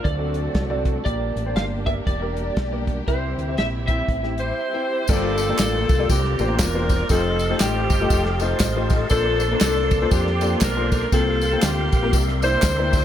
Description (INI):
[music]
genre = uptempo gospel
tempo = 119 BPM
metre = 4/4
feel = swing 60% on 8ths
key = unclear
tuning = A4 = 440 Hz
[part]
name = electric slide guitar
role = melody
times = 0.0-4.8 s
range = C5 to F5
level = -29 LUFS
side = right 2 dB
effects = analog chorus, tape echo
[part]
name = warm grand piano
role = accompaniment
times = 0.0-13.0 s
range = G2 to G5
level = -27 LUFS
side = left 4 dB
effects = ensemble chorus
[part]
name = tonewheel organ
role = sustained chords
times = 0.0-13.0 s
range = F#3 to C6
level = -31 LUFS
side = right 3 dB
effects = slow rotary speaker, chorus vibrato
[part]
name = warm studio string section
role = sustained chords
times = 0.0-5.1 s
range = G3 to G4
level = -37 LUFS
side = equal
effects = none
[part]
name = fingered electric bass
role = bass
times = 0.0-13.0 s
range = E1 to F2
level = -25 LUFS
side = equal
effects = none
[part]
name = warm soul drum kit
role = drums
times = 0.1-13.0 s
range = crash cymbal, hi-hat, kick drum, ride cymbal, snare drum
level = -23 LUFS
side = equal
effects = none
[part]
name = warm saxophone section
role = melody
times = 4.4-13.0 s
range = Bb3 to C5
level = -23 LUFS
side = left 1 dB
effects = tape echo
[part]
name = tambourine and handclaps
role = percussion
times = 5.1-13.0 s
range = none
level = -31 LUFS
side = left 2 dB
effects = none
[sound]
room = light reverb, small room ambience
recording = none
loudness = -18 LUFS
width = side -10 dB against mid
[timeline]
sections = 0.0-5.1 A section; 5.1-13.0 B section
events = none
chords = 0.0 D7; 1.1 Gm; 3.1 C; 5.1 Gm9; 6.1 C9sus4; 7.1 F9; 9.1 Bbmaj9; 11.1 C7sus4; 12.1 C9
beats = 0.05 0.55 | 1.05 1.56 2.06 2.57 | 3.07 3.58 4.08 4.59 | 5.09 5.59 6.10 6.60 | 7.10 7.60 8.11 8.61 | 9.11 9.61 10.12 10.62 | 11.12 11.63 12.13 12.63